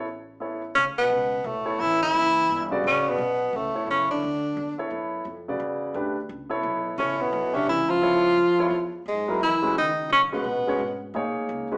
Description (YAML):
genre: modal jazz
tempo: 173 BPM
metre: 3/4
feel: swing 63% on 8ths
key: unclear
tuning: A4 = 440 Hz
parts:
  - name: warm concert grand piano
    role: accompaniment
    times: 0.0-11.8 s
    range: C#3 to E5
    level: -28 LUFS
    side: equal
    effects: none
  - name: upright bass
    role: bass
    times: 0.0-11.8 s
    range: F#1 to F#2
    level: -40 LUFS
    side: equal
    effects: none
  - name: warm tenor saxophone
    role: melody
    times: 0.8-4.8, 7.0-11.0 s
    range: G#3 to F4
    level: -21 LUFS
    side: equal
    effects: none
  - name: mellow bass clarinet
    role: second line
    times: 0.8-4.7, 7.0-11.0 s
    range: G#2 to F3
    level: -35 LUFS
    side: equal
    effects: none
room: wet large studio reverb, RT60 0.9 s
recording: band playing live in one room, small speaker sound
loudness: -22 LUFS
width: side -38 dB against mid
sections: 0.8-9.1 A section; 9.1-11.8 B section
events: none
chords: 0.0 Aadd9; 0.8 Dmaj9; 8.0 C#7alt; 9.1 F#9sus4